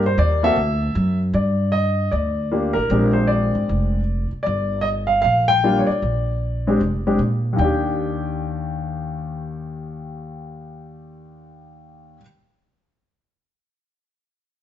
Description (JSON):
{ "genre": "jazz piano trio", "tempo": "154 BPM", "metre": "4/4", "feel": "swing 65% on 8ths", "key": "Eb major", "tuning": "A4 = 440 Hz", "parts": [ { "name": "warm grand piano", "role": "melody", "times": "0.0-12.2 s", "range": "Eb2 to G5", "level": "-20 LUFS", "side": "left 1 dB", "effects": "none" }, { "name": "upright bass", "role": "bass", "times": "0.0-12.2 s", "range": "F1 to Bb2", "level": "-22 LUFS", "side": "equal", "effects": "none" } ], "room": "moderate stone room reverb, RT60 1.1 s", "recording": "band playing live in one room, nothing above 7.8 kHz", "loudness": "-18 LUFS", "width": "side -11 dB against mid", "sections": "0.0-1.3 A section; 1.3-7.6 B section; 7.6-10.7 C section", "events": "none", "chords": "0.0 Ebmaj7; 0.6 D; 1.3 Gm; 2.9 Bb13; 4.5 Gm7; 6.0 Bb; 7.6 Ebmaj7" }